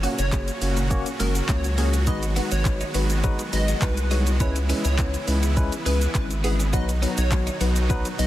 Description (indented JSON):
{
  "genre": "dance-pop",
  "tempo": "103 BPM",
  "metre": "4/4",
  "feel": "straight",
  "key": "B major",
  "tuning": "A4 = 438 Hz",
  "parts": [
    { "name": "tine electric piano", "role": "accompaniment", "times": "0.0-8.3 s", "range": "F#3 to C#5", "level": "-29 LUFS", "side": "left 3 dB", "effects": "medium stereo tremolo" },
    { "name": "supersaw chords", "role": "sustained chords", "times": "0.0-8.3 s", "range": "A#2 to F#4", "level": "-30 LUFS", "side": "right 2 dB", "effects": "sidechain pumping" },
    { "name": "twelve-string electric guitar", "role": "riff", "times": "0.0-8.1 s", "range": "G#3 to F#4", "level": "-35 LUFS", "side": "right 5 dB", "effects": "analog chorus" },
    { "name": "saturated sub bass", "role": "bass", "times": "0.0-8.3 s", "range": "F#1 to C#2", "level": "-23 LUFS", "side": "equal", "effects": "sidechain pumping" },
    { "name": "smooth R&B drum kit", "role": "drums", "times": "0.0-8.3 s", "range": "handclaps, hi-hat, kick drum, shaker", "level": "-27 LUFS", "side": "equal", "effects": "none" },
    { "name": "plucky unison lead", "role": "melody", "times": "0.2-8.3 s", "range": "G#4 to D#5", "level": "-33 LUFS", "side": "right 1 dB", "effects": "sidechain pumping, tape echo" }
  ],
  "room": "little or no reverb",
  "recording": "dense, heavily limited modern master",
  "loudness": "-20 LUFS",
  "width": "side -14 dB against mid",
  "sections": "0.0-8.3 A section",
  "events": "none",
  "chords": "0.0 F#; 2.1 G#m7; 4.4 C#m7; 6.7 B",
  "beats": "0.33 0.91 1.49 | 2.07 2.65 3.24 3.82 | 4.40 4.99 5.57 6.15 | 6.73 7.32 7.90"
}